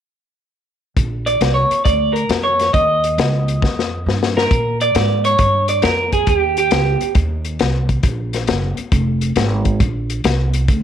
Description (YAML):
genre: electric blues shuffle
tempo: 136 BPM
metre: 4/4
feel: swing 67% on 8ths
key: unclear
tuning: A4 = 439 Hz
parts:
  - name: upright bass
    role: bass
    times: 1.0-10.8 s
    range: F1 to Bb2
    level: -19 LUFS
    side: right 1 dB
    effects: none
  - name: vintage drum kit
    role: drums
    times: 1.0-10.8 s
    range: hi-hat, kick drum, snare drum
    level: -19 LUFS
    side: left 2 dB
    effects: none
  - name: electric guitar through a small old amp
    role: melody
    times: 1.3-7.1 s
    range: G4 to Eb5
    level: -16 LUFS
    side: right 2 dB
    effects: slapback echo
room: light reverb, small room ambience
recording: 1960s-style stereo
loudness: -14 LUFS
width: side -9 dB against mid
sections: 1.0-4.5 A section; 4.5-10.8 B section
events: drum fill 3.6-4.5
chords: 1.0 Bb; 2.7 Eb7; 4.5 Bb7; 6.3 Eb7; 8.0 Bb7sus2